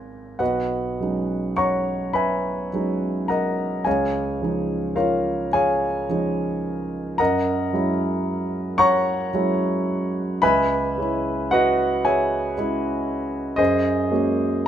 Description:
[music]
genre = classical, impressionist solo piano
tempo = 33-40 BPM (dotted quarters)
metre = 6/8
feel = rubato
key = B major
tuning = A4 = 440 Hz
[part]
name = warm grand piano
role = solo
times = 0.0-14.7 s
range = Ab1 to Bb6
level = -20 LUFS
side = equal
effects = none
[sound]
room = light reverb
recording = minimal, uncompressed stereo recording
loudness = -20 LUFS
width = side -10 dB against mid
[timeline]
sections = 0.4-14.7 A section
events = none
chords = 0.4 B69; 3.9 C#add9; 7.2 F#9; 10.4 C#m7; 13.6 Gbadd9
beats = | 0.40 2.14 | 3.86 5.52 | 7.19 8.78 | 10.42 12.05 | 13.59

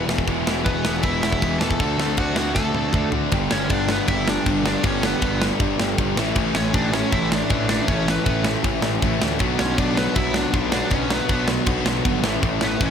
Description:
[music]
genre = punk rock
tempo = 158 BPM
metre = 4/4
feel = straight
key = unclear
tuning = A4 = 440 Hz
[part]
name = crunchy overdriven guitar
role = melody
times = 0.0-12.9 s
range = B3 to A5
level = -26 LUFS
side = equal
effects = none
[part]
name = overdriven semi-hollow guitar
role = riff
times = 0.0-12.9 s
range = E2 to D4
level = -26 LUFS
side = left 14 dB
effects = none
[part]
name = sludgy distorted guitar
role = riff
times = 0.0-12.9 s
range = G2 to G4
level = -27 LUFS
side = right 12 dB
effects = overdrive
[part]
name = fuzz picked electric bass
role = bass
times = 0.0-12.9 s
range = E1 to D2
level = -27 LUFS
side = equal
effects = overdrive
[part]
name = tight metal drum kit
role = drums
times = 0.1-12.9 s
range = crash cymbal, kick drum, snare drum, toms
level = -23 LUFS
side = equal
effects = none
[part]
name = crunchy overdriven guitar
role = riff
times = 0.3-12.9 s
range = G2 to F#4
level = -28 LUFS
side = equal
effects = none
[sound]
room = little or no reverb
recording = none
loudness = -18 LUFS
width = side -8 dB against mid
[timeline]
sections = 0.0-3.3 A section; 3.3-12.9 B section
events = drum fill 2.6-3.3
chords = 0.0 E; 1.8 D7; 3.3 G; 6.2 A; 9.4 Bm; 12.2 A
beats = | 0.29 0.67 1.05 1.43 | 1.81 2.19 2.57 2.95 | 3.33 3.71 4.09 4.47 | 4.85 5.23 5.61 5.99 | 6.37 6.75 7.13 7.51 | 7.89 8.27 8.65 9.03 | 9.41 9.79 10.16 10.54 | 10.92 11.30 11.67 12.05 | 12.43 12.80

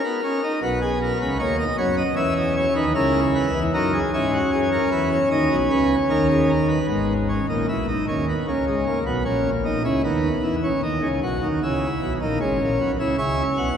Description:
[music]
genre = classical, baroque-style 3-part fugue for pipe organ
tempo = 76 BPM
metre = 4/4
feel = straight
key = B major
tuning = A4 = 436 Hz
[part]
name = pipe organ, plenum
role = solo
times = 0.0-13.8 s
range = G#1 to F#5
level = -19 LUFS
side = equal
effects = none
[sound]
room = wet cathedral reverb, RT60 5.6 s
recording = heard from further back in the room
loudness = -19 LUFS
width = side -8 dB against mid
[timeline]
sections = 0.0-6.9 A section; 6.9-13.8 B section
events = none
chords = 0.0 B; 2.2 C#m7; 3.7 F#7; 5.3 B; 6.9 E/G#; 8.5 A#m7b5; 10.0 B/D#; 11.6 C#m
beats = | 0.62 1.40 2.18 2.96 | 3.75 4.53 5.32 6.11 | 6.90 7.69 8.48 9.26 | 10.05 10.84 11.62 12.40 | 13.18

